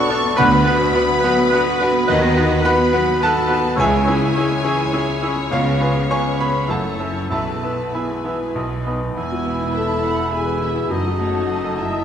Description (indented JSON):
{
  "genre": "classical",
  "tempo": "104 BPM",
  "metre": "3/4",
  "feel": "rubato",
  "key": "E major",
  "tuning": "A4 = 439 Hz",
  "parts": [
    { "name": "bright grand piano", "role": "melody", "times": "0.0-12.0 s", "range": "B1 to D#6", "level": "-19 LUFS", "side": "left 2 dB", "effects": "none" },
    { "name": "warm studio violin section", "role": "melody", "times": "0.0-12.0 s", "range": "A4 to G#5", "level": "-30 LUFS", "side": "left 3 dB", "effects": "none" },
    { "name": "warm symphonic violin section", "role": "second line", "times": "0.0-12.0 s", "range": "D#5 to C#6", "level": "-28 LUFS", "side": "left 1 dB", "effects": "none" },
    { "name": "warm symphonic viola section", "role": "accompaniment", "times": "0.0-12.0 s", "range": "D#3 to G#4", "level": "-26 LUFS", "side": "right 3 dB", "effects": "none" },
    { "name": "dark French horn section", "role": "sustained chords", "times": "0.0-12.0 s", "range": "A3 to A4", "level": "-26 LUFS", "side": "left 1 dB", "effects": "none" },
    { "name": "flute section", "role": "second line", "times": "0.1-12.0 s", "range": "A5 to F#6", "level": "-29 LUFS", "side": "right 2 dB", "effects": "none" },
    { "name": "mellow oboe", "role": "second line", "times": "0.1-12.0 s", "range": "A4 to E5", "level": "-27 LUFS", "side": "right 2 dB", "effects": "none" },
    { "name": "rich symphonic double bass section", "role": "bass", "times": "0.4-12.0 s", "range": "E1 to D#2", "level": "-27 LUFS", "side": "right 4 dB", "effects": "none" },
    { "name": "warm symphonic cello section", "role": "bass", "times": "0.4-12.0 s", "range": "E2 to D#3", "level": "-29 LUFS", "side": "right 2 dB", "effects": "none" }
  ],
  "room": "wet concert hall reverb, RT60 2.0 s",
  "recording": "none",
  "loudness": "-16 LUFS",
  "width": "side -8 dB against mid",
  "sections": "0.0-9.2 A section; 9.2-12.0 B section",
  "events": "none",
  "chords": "0.4 Bm/D; 2.1 B/D#; 3.8 C#m; 5.5 C#7; 6.7 F#m7; 7.3 E/B; 8.6 B; 9.2 E; 10.9 D#dim/F#",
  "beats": "| 0.37 0.94 1.51 | 2.08 2.64 3.22 | 3.79 4.36 4.94 | 5.51 6.09 6.69 | 7.32 7.95 8.57 | 9.18 9.75 10.32 | 10.91 11.49"
}